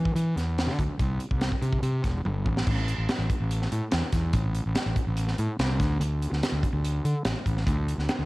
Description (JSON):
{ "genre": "math rock and midwest emo", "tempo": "144 BPM", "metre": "4/4", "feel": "straight", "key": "unclear", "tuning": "A4 = 440 Hz", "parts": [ { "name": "fuzz fingered electric bass", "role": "bass", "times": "0.0-8.3 s", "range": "E1 to E3", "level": "-26 LUFS", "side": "equal", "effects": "overdrive" }, { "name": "crisp fusion drum kit", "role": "drums", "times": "0.1-8.2 s", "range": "crash cymbal, hi-hat, kick drum, snare drum, toms", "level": "-28 LUFS", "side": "equal", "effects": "none" } ], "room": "little or no reverb", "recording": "home recording on cassette", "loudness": "-24 LUFS", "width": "side -21 dB against mid", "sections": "0.0-2.7 A section; 2.7-8.3 B section", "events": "drum fill 2.2-2.7", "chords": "none" }